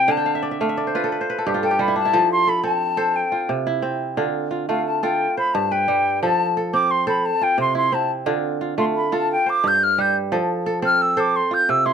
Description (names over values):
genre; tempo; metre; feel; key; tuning
west african traditional; 117 BPM (dotted quarters); 12/8; straight; F lydian; A4 = 442 Hz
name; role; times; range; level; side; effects
mellow silver concert flute; melody; 0.0-11.9 s; F5 to G6; -19 LUFS; left 1 dB; none
kora; arpeggios; 0.0-11.9 s; G2 to G5; -22 LUFS; right 2 dB; none
room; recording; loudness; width
light reverb; none; -18 LUFS; side -7 dB against mid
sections
0.0-11.9 A section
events
flute solo 0.0-11.9; kora fill 0.1-2.1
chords
0.1 Dm; 1.1 N.C.; 2.1 F; 3.2 C; 4.2 Dm; 5.2 G; 6.2 F; 7.2 C; 8.3 Dm; 9.3 G9sus4; 10.3 F; 11.3 C